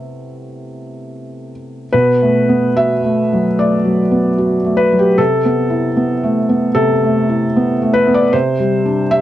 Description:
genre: neoclassical minimalist piano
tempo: 75 BPM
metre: 4/4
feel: rubato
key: unclear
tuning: A4 = 440 Hz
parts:
  - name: felt-muted upright piano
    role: solo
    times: 0.0-9.2 s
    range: B2 to E5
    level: -13 LUFS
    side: equal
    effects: none
room: light reverb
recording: dark, warm production, nothing above 10.5 kHz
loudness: -12 LUFS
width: side -13 dB against mid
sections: 0.0-1.9 A section; 1.9-9.2 B section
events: none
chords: 0.0 Amadd9/C; 1.9 Bm7; 5.2 Amadd9/C; 8.3 Csus2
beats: 0.28 1.10 | 1.92 2.77 3.58 4.38 | 5.18 5.98 6.77 7.55 | 8.33 9.11

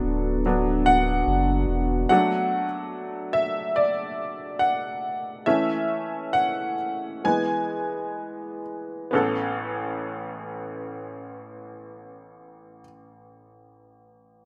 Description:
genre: pop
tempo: 61-73 BPM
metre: 4/4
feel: straight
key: A major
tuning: A4 = 441 Hz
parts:
  - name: bright upright piano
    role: accompaniment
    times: 0.0-14.4 s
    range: A1 to G#5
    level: -26 LUFS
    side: equal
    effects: none
  - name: glass harmonica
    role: sustained chords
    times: 0.0-2.1 s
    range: B3 to F#4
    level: -30 LUFS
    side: equal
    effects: none
  - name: warm sub bass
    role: bass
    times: 0.0-2.1 s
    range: D1 to F#1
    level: -28 LUFS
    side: equal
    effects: none
room: light reverb, small room ambience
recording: rough home demo mix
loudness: -25 LUFS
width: mono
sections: 0.0-9.1 A section; 9.1-13.0 B section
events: upright piano solo 0.0-9.1; slowing down 2.1-9.1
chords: 0.0 Bm/D; 2.1 D; 5.5 A/E; 7.2 E; 9.1 Aadd9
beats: 0.45 1.27 | 2.10 2.92 3.75 4.59 | 5.45 6.33 7.23 8.16 | 9.12 10.10 11.08 12.06

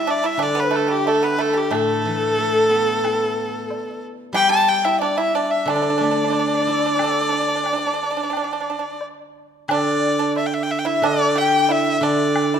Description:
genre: chinese traditional, Chinese chamber ensemble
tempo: 90 BPM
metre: 4/4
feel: rubato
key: D zhi mode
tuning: A4 = 439 Hz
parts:
  - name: bright erhu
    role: melody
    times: 0.0-12.6 s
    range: G4 to A5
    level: -21 LUFS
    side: equal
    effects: none
  - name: mellow hollow dizi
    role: second line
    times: 0.0-12.6 s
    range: A4 to G5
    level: -24 LUFS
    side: left 6 dB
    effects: none
  - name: pipa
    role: second line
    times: 0.0-12.6 s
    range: G3 to A4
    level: -25 LUFS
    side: right 8 dB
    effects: none
  - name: steel-string zither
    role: accompaniment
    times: 0.0-12.6 s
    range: A2 to A4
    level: -24 LUFS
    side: right 2 dB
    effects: none
  - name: woodblock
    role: percussion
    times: 0.4-12.5 s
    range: none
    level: -32 LUFS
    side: left 3 dB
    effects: none
room: moderate concert hall reverb, RT60 1.8 s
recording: none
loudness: -17 LUFS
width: side -8 dB against mid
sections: 0.0-9.7 A section; 9.7-12.6 B section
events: none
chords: none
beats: 0.39 1.05 | 1.72 2.38 3.04 3.70 | 4.36 5.01 5.67 6.33 | 6.99 7.66 8.33 9.01 | 9.70 10.37 11.04 11.70 | 12.36

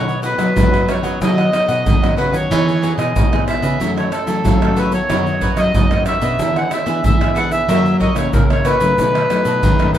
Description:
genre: samba and choro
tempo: 93 BPM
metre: 4/4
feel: straight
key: unclear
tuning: A4 = 441 Hz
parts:
  - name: accordion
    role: melody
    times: 0.0-10.0 s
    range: A4 to F#5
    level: -19 LUFS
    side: equal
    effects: none
  - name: cavaquinho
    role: accompaniment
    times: 0.0-10.0 s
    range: D4 to F#5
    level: -26 LUFS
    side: right 1 dB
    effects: none
  - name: nylon-string guitar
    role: accompaniment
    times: 0.0-10.0 s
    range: F#2 to G#4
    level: -24 LUFS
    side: left 4 dB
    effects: none
  - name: nylon-string guitar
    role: bass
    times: 0.0-10.0 s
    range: B2 to F#3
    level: -20 LUFS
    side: equal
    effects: none
  - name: egg shaker, pandeiro, tamborim and surdo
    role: percussion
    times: 0.1-10.0 s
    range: none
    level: -18 LUFS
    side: right 1 dB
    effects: none
room: light reverb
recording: minimal, uncompressed stereo recording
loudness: -13 LUFS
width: side -10 dB against mid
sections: 0.0-10.0 A section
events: none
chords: 0.0 B; 2.5 Emaj7; 3.8 F#m7; 5.1 Badd9/F#; 6.4 E7; 7.7 F#7; 9.0 B7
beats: 0.57 1.21 1.86 | 2.51 3.16 3.81 4.45 | 5.10 5.75 6.39 7.04 | 7.69 8.34 8.98 9.63

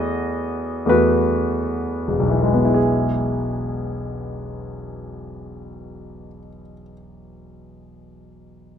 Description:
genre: classical, romantic nocturne for solo piano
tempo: 36 BPM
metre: 4/4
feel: rubato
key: E major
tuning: A4 = 437 Hz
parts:
  - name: clear concert grand piano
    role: solo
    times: 0.0-8.8 s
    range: E1 to D#5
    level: -20 LUFS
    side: equal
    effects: none
room: light reverb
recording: close, detailed microphones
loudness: -18 LUFS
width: side -8 dB against mid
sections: 0.0-2.8 A section; 2.8-8.8 B section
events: slowing down 0.0-2.8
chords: 0.0 B7/E; 2.8 E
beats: 0.90 | 2.76 4.40 6.03 7.70

